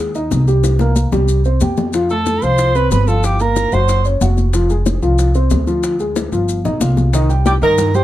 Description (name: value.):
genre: Afro-Cuban jazz.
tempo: 185 BPM.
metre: 4/4.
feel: straight.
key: unclear.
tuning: A4 = 440 Hz.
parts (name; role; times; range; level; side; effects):
warm upright piano; accompaniment; 0.0-8.0 s; Eb3 to G5; -19 LUFS; equal; none.
upright bass; bass; 0.0-8.0 s; F1 to G2; -15 LUFS; equal; none.
maracas; percussion; 0.1-8.0 s; none; -31 LUFS; left 6 dB; none.
bongos; percussion; 0.2-8.0 s; none; -24 LUFS; left 5 dB; none.
congas; percussion; 0.2-8.0 s; none; -23 LUFS; left 2 dB; none.
clear alto saxophone; melody; 2.1-4.1, 7.5-8.0 s; G4 to C5; -17 LUFS; equal; none.
breathy bright jazz flute; second line; 2.1-4.1, 7.5-8.0 s; G5 to C6; -21 LUFS; right 6 dB; none.
room: little or no reverb.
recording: close, detailed microphones.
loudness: -13 LUFS.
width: side -14 dB against mid.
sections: 0.0-7.1 A section.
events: drum fill 0.6-1.9, 6.2-7.1.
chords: 0.0 Abmaj7; 0.6 C5; 1.9 Fadd9; 3.2 Gbmaj7#11; 3.9 Gb5; 4.5 Fm; 5.8 Ddim; 6.5 Eb69/G; 7.1 Cm.